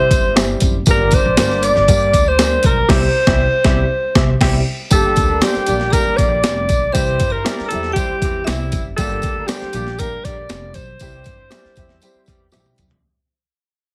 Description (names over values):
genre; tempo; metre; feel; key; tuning
uptempo 1960s-style soul; 118 BPM; 4/4; straight; C mixolydian; A4 = 439 Hz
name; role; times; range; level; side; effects
breathy alto saxophone; melody; 0.0-12.5 s; E4 to D5; -20 LUFS; equal; slapback echo, plate reverb
mellow horn section; second line; 0.0-12.5 s; D3 to E5; -31 LUFS; equal; plate reverb
vibraphone with hard mallets; second line; 0.0-8.8 s; E5 to D6; -32 LUFS; equal; plate reverb
warm upright piano; accompaniment; 0.0-12.9 s; G3 to G5; -27 LUFS; equal; plate reverb
upright bass; bass; 0.0-13.0 s; F1 to G2; -24 LUFS; equal; none
breakbeat sampler-style drum kit; drums; 0.1-13.0 s; crash cymbal, hi-hat, kick drum, snare drum, toms; -20 LUFS; equal; none
tambourine; percussion; 0.1-12.9 s; none; -32 LUFS; equal; none
mellow electric guitar; stabs; 0.4-12.6 s; G4 to E5; -28 LUFS; equal; plate reverb
room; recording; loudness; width
light reverb; heavily compressed radio sound, multiband compression; -16 LUFS; mono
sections
0.0-4.9 A section; 4.9-13.0 B section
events
band accent 2.9-4.9; fade-out 4.9-13.0; drum fill 12.5-13.0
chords
0.0 C; 0.9 Gm; 2.9 C; 4.9 Gm; 6.9 C; 9.0 Gm; 11.0 C